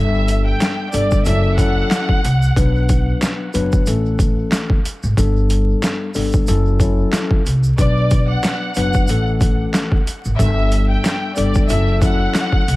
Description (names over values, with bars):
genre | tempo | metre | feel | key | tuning
hip hop, boom-bap hip-hop | 92 BPM | 4/4 | swing 56% on 16ths | B minor | A4 = 440 Hz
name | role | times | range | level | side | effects
bright studio violin section | melody | 0.0-2.5, 7.8-12.8 s | D5 to G5 | -23 LUFS | equal | high-pass filter, low-pass filter, dub echo
mellow tine electric piano | accompaniment | 0.0-12.6 s | E3 to B4 | -21 LUFS | left 3 dB | cassette tape, high-pass filter, low-pass filter
upright bass | bass | 0.0-12.8 s | F#1 to C2 | -18 LUFS | equal | none
boom bap sampler-style drum kit | drums | 0.3-12.8 s | handclaps, hi-hat, kick drum, snare drum | -18 LUFS | equal | overdrive
tube shaker | percussion | 0.3-12.8 s | none | -37 LUFS | right 2 dB | dub echo
room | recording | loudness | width
small room reverb | echo-heavy mix, vinyl crackle | -14 LUFS | side -19 dB against mid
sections
0.0-12.8 A section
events
none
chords
0.0 Gadd9; 1.3 F#m7; 2.6 Bm; 3.9 A; 5.2 Gadd9; 6.5 F#m7; 7.8 Bm; 9.1 A; 10.4 Gadd9; 11.7 F#m7